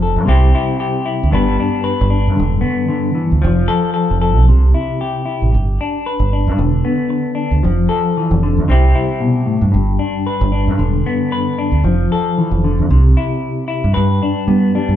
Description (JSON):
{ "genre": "highlife guitar band", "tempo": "114 BPM", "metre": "4/4", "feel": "swing 54% on 16ths", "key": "G mixolydian", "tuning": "A4 = 440 Hz", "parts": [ { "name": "semi-hollow electric guitar", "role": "accompaniment", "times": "0.0-15.0 s", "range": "G2 to B4", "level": "-16 LUFS", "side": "left 3 dB", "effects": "harmonic tremolo" }, { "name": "deep dub fingered electric bass", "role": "bass", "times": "0.0-15.0 s", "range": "E1 to G3", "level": "-14 LUFS", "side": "right 1 dB", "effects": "none" } ], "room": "moderate large studio reverb, RT60 0.9 s", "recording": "band playing live in one room", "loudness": "-13 LUFS", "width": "side -11 dB against mid", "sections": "0.0-14.0 A section; 14.0-15.0 B section", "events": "none", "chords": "0.3 C; 1.3 G; 3.4 F; 4.5 C; 5.5 G; 7.6 F; 8.7 C; 9.7 G; 11.8 F; 12.9 C; 14.0 G" }